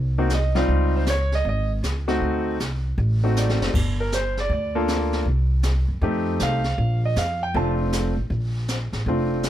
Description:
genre	jazz piano trio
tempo	158 BPM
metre	4/4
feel	swing 64% on 8ths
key	Bb major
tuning	A4 = 438 Hz
part	upright bass	bass	0.0-9.5 s	F1 to Gb2	-23 LUFS	equal	none
part	clear concert grand piano	melody	0.2-9.5 s	G3 to A5	-24 LUFS	equal	none
part	jazz brush drum kit	drums	0.3-9.5 s	brushed snare drum, crash cymbal, hi-hat, kick drum, snare drum	-29 LUFS	left 1 dB	none
room	little or no reverb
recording	none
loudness	-20 LUFS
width	side -12 dB against mid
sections	0.0-9.5 A section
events	drum fill 3.3-3.7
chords	0.0 Ab (rootless); 0.7 Dbmaj9#11; 2.2 D7b9; 3.7 Gm7; 5.3 N.C.; 6.0 F7; 6.8 Bbmaj7

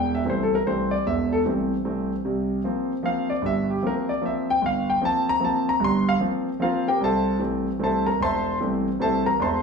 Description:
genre	jazz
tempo	151 BPM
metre	3/4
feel	swing 65% on 8ths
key	C mixolydian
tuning	A4 = 441 Hz
part	warm concert grand piano	solo	0.0-9.6 s	E1 to C6	-21 LUFS	equal	none
room	moderate large studio reverb, RT60 1.2 s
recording	studio reverb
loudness	-21 LUFS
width	side -5 dB against mid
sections	0.0-9.6 A section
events	none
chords	0.0 Am; 2.2 C7sus4; 7.0 Am

